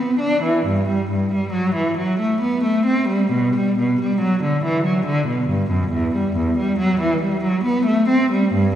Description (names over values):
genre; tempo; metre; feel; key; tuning
classical, baroque-style suite movement for unaccompanied cello; 69 BPM; 3/4; uneven beats, rubato; unclear; A4 = 440 Hz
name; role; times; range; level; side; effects
rich cello; solo; 0.0-8.8 s; E2 to D4; -17 LUFS; equal; none
room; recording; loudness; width
wet concert hall reverb, RT60 2.3 s; heard from further back in the room; -17 LUFS; side -10 dB against mid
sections
0.7-8.8 A section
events
none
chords
none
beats
| 0.65 1.54 2.42 | 3.32 4.21 5.06 | 5.92 6.79 7.65 | 8.53